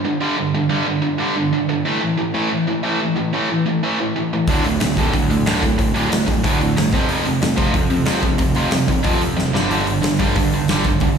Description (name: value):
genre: punk rock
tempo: 183 BPM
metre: 4/4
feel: straight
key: D minor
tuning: A4 = 440 Hz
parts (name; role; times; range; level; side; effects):
- tight distorted guitar; riff; 0.0-11.2 s; D2 to A3; -18 LUFS; right 1 dB; distortion
- fuzz picked electric bass; bass; 4.5-11.2 s; D1 to G2; -23 LUFS; right 1 dB; overdrive
- big rock drum kit; drums; 4.5-11.1 s; hi-hat, kick drum, snare drum; -20 LUFS; equal; none
room: moderate lush hall reverb, RT60 1.7 s, studio reverb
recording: big arena sound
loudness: -16 LUFS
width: side -6 dB against mid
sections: 0.0-11.2 A section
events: drum fill 9.4-9.7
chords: 0.0 G5; 1.9 A5; 4.5 D5; 6.9 F5; 9.5 G5